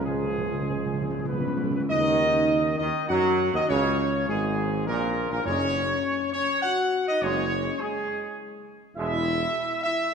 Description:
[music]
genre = classical, ceremonial fanfare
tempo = 102 BPM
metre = 3/4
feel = straight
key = F# major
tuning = A4 = 441 Hz
[part]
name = dark trumpet section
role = melody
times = 0.0-10.1 s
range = G#4 to F#5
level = -26 LUFS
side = right 1 dB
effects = none
[part]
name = mellow French horn section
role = sustained chords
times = 0.0-10.1 s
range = G#3 to F#4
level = -30 LUFS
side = left 4 dB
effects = none
[part]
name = mellow tuba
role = bass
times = 0.0-9.5 s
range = E1 to F#2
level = -30 LUFS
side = right 2 dB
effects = none
[part]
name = timpani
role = percussion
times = 0.0-1.9, 5.5-6.3 s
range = F#2 to C#3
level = -30 LUFS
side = equal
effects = none
[part]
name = warm trombone section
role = sustained chords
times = 0.1-9.2 s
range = G#2 to G#3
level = -32 LUFS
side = right 3 dB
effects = none
[sound]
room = wet concert hall reverb, RT60 2.3 s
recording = minimal, uncompressed stereo recording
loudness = -23 LUFS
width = side -6 dB against mid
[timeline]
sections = 0.0-1.9 A section; 1.9-10.1 A section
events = timpani fill 0.0-1.9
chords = 0.0 C#; 1.9 D#m; 3.7 C#5; 5.5 F#sus2; 9.0 E

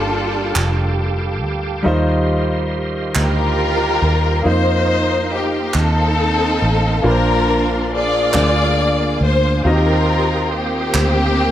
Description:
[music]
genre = slow gospel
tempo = 46 BPM (dotted quarters)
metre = 6/8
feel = straight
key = unclear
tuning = A4 = 441 Hz
[part]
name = warm studio string section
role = melody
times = 0.0-11.5 s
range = Bb3 to D5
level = -18 LUFS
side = left 1 dB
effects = none
[part]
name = clear baby grand piano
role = accompaniment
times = 0.0-11.5 s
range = G2 to Eb5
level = -21 LUFS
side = equal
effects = none
[part]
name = bright tonewheel organ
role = sustained chords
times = 0.0-11.5 s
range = Bb3 to Eb6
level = -26 LUFS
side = right 3 dB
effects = fast rotary speaker, chorus vibrato
[part]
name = vintage muted fingered electric bass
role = bass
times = 0.0-11.5 s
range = F1 to F2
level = -19 LUFS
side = equal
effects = none
[part]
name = group handclap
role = percussion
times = 0.6-11.3 s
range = none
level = -23 LUFS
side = right 3 dB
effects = none
[sound]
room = moderate large studio reverb, RT60 0.9 s, small room reverb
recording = none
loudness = -14 LUFS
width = side -11 dB against mid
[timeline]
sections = 0.0-11.5 A section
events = none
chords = 0.0 Gm9; 1.9 Eb69; 4.5 F7sus4; 7.0 Bbadd9; 8.3 Bb7/D; 9.6 Eb69

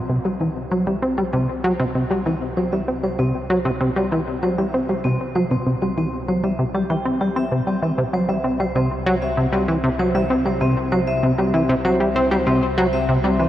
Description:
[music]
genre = ambient, sequencer-driven space music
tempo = 97 BPM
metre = 4/4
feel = straight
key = C lydian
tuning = A4 = 440 Hz
[part]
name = vibraphone with medium hard mallets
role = arpeggios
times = 0.0-13.5 s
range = C4 to G5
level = -27 LUFS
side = equal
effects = auto-pan, ping-pong delay
[part]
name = analog drone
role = bass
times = 0.0-13.5 s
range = C2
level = -30 LUFS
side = equal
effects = chorus
[part]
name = plucky analog bass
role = riff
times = 0.1-13.5 s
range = C3 to C4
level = -19 LUFS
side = equal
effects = ping-pong delay
[sound]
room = wet huge ambient reverb, RT60 7.7 s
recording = worn, warbling old tape, cassette tape, warbly pitch drift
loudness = -18 LUFS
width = side -12 dB against mid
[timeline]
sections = 0.0-13.5 A section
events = fade-in on vibraphone 0.0-13.5; fade-in on synth drone 0.0-13.5; filter sweep on analog synth bass 0.0-13.5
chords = 0.0 C

